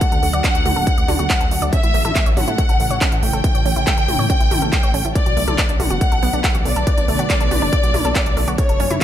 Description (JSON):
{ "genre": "uplifting trance", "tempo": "140 BPM", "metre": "4/4", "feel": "straight", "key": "B minor", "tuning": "A4 = 441 Hz", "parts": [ { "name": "warm symphonic violin section", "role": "second line", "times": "0.0-9.0 s", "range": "C#5 to G5", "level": "-21 LUFS", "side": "left 1 dB", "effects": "dub echo" }, { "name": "shimmering ambient pad", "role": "sustained chords", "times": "0.0-9.0 s", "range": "C#3 to B3", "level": "-27 LUFS", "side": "right 1 dB", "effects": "chorus, built-in reverb, sidechain pumping" }, { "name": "analog pluck", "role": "arpeggios", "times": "0.0-9.0 s", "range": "A3 to D5", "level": "-27 LUFS", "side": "right 3 dB", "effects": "chorus, sidechain pumping, dub echo" }, { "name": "big-room dance drum kit", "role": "drums", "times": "0.0-9.0 s", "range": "handclaps, hi-hat, toms", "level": "-23 LUFS", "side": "equal", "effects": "overdrive" }, { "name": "electronic kick drum", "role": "drums", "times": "0.0-9.0 s", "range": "none", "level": "-18 LUFS", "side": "equal", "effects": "distortion" }, { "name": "plucky analog bass", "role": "bass", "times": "0.1-9.0 s", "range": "D1 to A2", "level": "-22 LUFS", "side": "equal", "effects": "tube saturation, sidechain pumping" } ], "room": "light reverb, digital ambience", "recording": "none", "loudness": "-15 LUFS", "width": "side -11 dB against mid", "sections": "0.0-9.0 A section", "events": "filter sweep on synth arpeggio sound 0.0-9.0", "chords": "0.0 D; 1.7 A; 5.2 Bm7" }